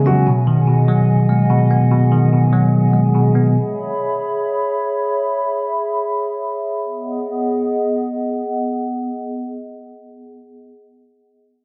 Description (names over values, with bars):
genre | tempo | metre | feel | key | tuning
hip hop | 146 BPM | 4/4 | half-time | G# minor | A4 = 440 Hz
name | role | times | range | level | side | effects
bell-like tine electric piano | accompaniment | 0.0-3.6 s | B2 to C#4 | -15 LUFS | equal | none
warbly tape-like pad | sustained chords | 0.0-10.9 s | B3 to B5 | -23 LUFS | equal | chorus, built-in reverb
room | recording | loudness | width
wet recital hall reverb, RT60 1.4 s, digital ambience | dense, heavily limited modern master, low-pass filter | -18 LUFS | mono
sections
0.0-6.8 A section; 6.8-10.1 B section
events
filter sweep 0.0-6.8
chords
0.3 G#m7; 3.6 C#m7; 6.8 G#m7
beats
| 0.27 0.68 1.09 1.50 | 1.91 2.32 2.73 3.14 | 3.55 3.96 4.38 4.79 | 5.20 5.61 6.02 6.43 | 6.84 7.25 7.66 8.07 | 8.48 8.90 9.31 9.72